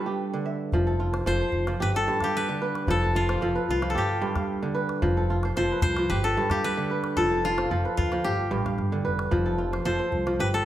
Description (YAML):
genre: west african traditional, West African string and xylophone music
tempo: 112 BPM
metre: 4/4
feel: straight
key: F lydian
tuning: A4 = 440 Hz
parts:
  - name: koto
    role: melody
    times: 0.0-10.7 s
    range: F4 to C5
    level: -29 LUFS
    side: left 2 dB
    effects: none
  - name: kora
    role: arpeggios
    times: 0.0-10.7 s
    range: G2 to F5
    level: -27 LUFS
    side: right 1 dB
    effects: none
  - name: upright bass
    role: bass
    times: 0.7-10.6 s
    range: F1 to D2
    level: -29 LUFS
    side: equal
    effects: none
  - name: calabash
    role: percussion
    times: 0.7-10.6 s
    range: none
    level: -32 LUFS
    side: left 1 dB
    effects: none
room: wet recital hall reverb, RT60 1.4 s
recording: none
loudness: -23 LUFS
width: side -12 dB against mid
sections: 0.7-10.7 A section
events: none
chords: 0.0 G; 0.7 F; 1.8 G; 2.9 F; 4.0 G; 5.0 F; 6.1 G; 7.2 F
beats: 0.20 | 0.73 1.27 1.81 2.34 | 2.88 3.42 3.95 4.49 | 5.02 5.56 6.10 6.63 | 7.17 7.71 8.24 8.78 | 9.32 9.85 10.39